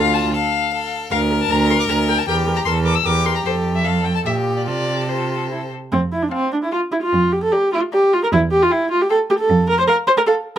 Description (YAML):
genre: quick classical-period movement for string quartet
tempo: 152 BPM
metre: 3/4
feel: rubato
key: F major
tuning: A4 = 442 Hz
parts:
  - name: rich violin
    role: melody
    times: 0.0-10.6 s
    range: C5 to E6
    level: -22 LUFS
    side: left 6 dB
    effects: none
  - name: bright violin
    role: second line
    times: 0.0-10.6 s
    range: F4 to G5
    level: -25 LUFS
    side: left 4 dB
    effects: none
  - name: dark viola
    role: accompaniment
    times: 0.0-10.6 s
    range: C4 to C5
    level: -18 LUFS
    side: right 1 dB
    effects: none
  - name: rich cello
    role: bass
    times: 0.0-9.8 s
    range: D2 to C3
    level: -20 LUFS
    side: right 3 dB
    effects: none
room: light reverb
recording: close, detailed microphones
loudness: -16 LUFS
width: side -10 dB against mid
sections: 0.0-5.9 A section; 5.9-10.6 B section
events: none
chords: 0.0 Dm; 1.1 Bb/D; 2.3 C13/E (rootless); 3.5 F; 4.3 Gm/Bb; 4.7 F/C; 5.5 C; 5.9 F; 7.1 Bb/F; 8.3 C/E; 9.5 F5